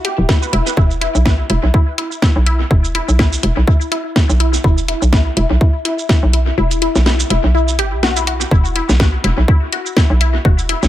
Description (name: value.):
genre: minimal techno.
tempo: 124 BPM.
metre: 4/4.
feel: swing 56% on 16ths.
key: E minor.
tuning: A4 = 439 Hz.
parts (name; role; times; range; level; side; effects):
resonant blip pluck; riff; 0.0-10.7 s; E4 to B4; -20 LUFS; left 2 dB; phaser, sidechain pumping, tape echo.
garage drum kit; drums; 0.0-10.9 s; hi-hat, shaker, snare drum; -20 LUFS; equal; dub echo.
hollow knocking FM bass; bass; 0.2-10.9 s; D1 to B1; -15 LUFS; equal; sidechain pumping.
electronic kick drum; drums; 0.3-10.6 s; none; -13 LUFS; equal; none.
room: light reverb.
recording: echo-heavy mix.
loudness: -12 LUFS.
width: side -13 dB against mid.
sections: 0.0-8.5 A section; 8.5-10.9 B section.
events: kick drops out 6.6-8.5; drop 8.5-10.9.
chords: 0.0 E5.